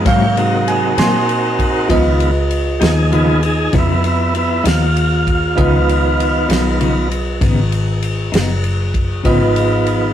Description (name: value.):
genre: slow blues.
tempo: 65 BPM (dotted quarters).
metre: 12/8.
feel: straight.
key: Db mixolydian.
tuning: A4 = 444 Hz.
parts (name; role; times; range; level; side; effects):
bell-like tine electric piano; accompaniment; 0.0-10.1 s; C3 to C6; -20 LUFS; right 2 dB; fast stereo tremolo.
tonewheel organ; sustained chords; 0.0-10.1 s; Eb3 to G5; -18 LUFS; right 1 dB; slow rotary speaker.
vintage muted fingered electric bass; bass; 0.0-10.1 s; Gb1 to Bb2; -17 LUFS; left 1 dB; none.
clean electric guitar; accompaniment; 0.1-9.4 s; Ab2 to Eb4; -20 LUFS; left 3 dB; tremolo.
warm soul drum kit; drums; 0.1-10.0 s; kick drum, ride cymbal, snare drum; -20 LUFS; equal; none.
room: light reverb.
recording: rough rehearsal-room recording, warm saturation.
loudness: -13 LUFS.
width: side -10 dB against mid.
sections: 0.0-1.9 A section; 1.9-10.1 A section.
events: tine electric piano solo 0.0-1.9; tonewheel organ solo 1.9-10.1.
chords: 0.1 Ab9; 1.9 Db9.